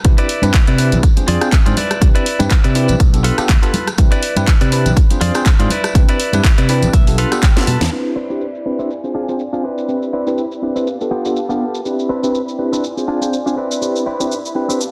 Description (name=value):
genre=filtered disco house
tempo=122 BPM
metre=4/4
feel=swing 56% on 16ths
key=C major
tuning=A4 = 440 Hz
part: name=bell-like tine electric piano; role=accompaniment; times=0.0-14.8 s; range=B3 to C5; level=-23 LUFS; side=equal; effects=phaser, sidechain pumping, low-pass filter
part: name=fingered electric bass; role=bass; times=0.0-7.9 s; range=B1 to C3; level=-19 LUFS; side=equal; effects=sidechain pumping, low-pass filter
part: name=electronic kick drum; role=drums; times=0.0-7.5 s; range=none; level=-14 LUFS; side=equal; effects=none
part: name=house drum kit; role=drums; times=0.0-14.9 s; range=crash cymbal, handclaps, hi-hat, rim click, shaker, snare drum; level=-25 LUFS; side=equal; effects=low-pass filter on snare, sidechain pumping on hats, low-pass filter on hats, sidechain pumping on cymbals, low-pass filter on cymbals, sidechain pumping on perc, low-pass filter on perc, low-pass filter on room
part: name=tambourine and congas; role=percussion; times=0.0-7.9 s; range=none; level=-27 LUFS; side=equal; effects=sidechain pumping on perc, low-pass filter on perc
part: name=direct-recorded clean electric guitar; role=riff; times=0.2-14.8 s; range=B3 to A5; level=-25 LUFS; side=equal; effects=sidechain pumping, low-pass filter
part: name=dark chamber string section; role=sustained chords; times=7.9-14.9 s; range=B3 to B5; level=-28 LUFS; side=equal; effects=sidechain pumping, low-pass filter
room=light reverb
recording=dense, heavily limited modern master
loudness=-15 LUFS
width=mono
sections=0.0-7.9 A section; 7.9-14.9 B section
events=clean electric guitar fill 6.4-7.9; drum fill 7.5-7.9; filter sweep on drum 7.9-14.9; filter sweep 7.9-14.9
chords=0.1 Cmaj9; 1.0 Fm6; 1.8 Cmaj9; 3.0 G9/B; 4.0 Cmaj9; 5.0 Fm6; 5.7 Cmaj9; 6.9 G9/B; 7.9 Cmaj9; 8.9 Fm6; 9.6 Cmaj9; 10.9 G9/B; 11.9 Cmaj9; 12.8 Fm6; 13.6 Cmaj9